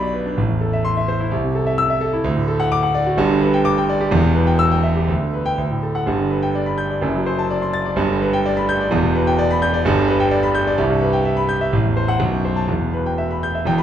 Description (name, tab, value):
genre	classical, virtuoso piano study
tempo	127 BPM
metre	2/4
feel	rubato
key	G major, E minor from 9.9 s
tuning	A4 = 440 Hz
part	clear concert grand piano	solo	0.0-13.8 s	E1 to A6	-16 LUFS	equal	none
room	wet recital hall reverb, RT60 1.4 s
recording	none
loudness	-16 LUFS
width	side -10 dB against mid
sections	0.0-6.1 A section; 6.1-13.7 B section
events	none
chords	0.4 Am; 1.3 Am/C; 2.2 D; 3.2 G; 4.1 Em; 5.1 G/D; 5.6 D; 6.1 G; 7.0 D7/F#; 8.0 G; 8.9 Em7; 9.9 G; 10.8 Cmaj7; 11.7 F#m7b5/A; 12.2 B5; 12.7 Em